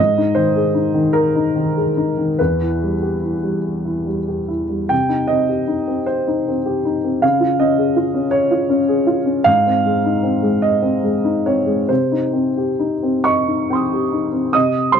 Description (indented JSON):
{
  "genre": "neoclassical minimalist piano",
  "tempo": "43-55 BPM (dotted quarters)",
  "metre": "6/8",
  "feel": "rubato",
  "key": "C phrygian",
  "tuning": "A4 = 440 Hz",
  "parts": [
    { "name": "warm upright piano", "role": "solo", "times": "0.0-15.0 s", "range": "E2 to Eb6", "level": "-15 LUFS", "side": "equal", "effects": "none" }
  ],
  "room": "little or no reverb",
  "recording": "dry, close 1970s-style studio recording",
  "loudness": "-15 LUFS",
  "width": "side -7 dB against mid",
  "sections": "0.0-14.5 A section",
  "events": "none",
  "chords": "0.0 Ab; 2.4 Em; 4.9 Cm; 7.2 Db; 9.5 Ab; 11.9 Cm"
}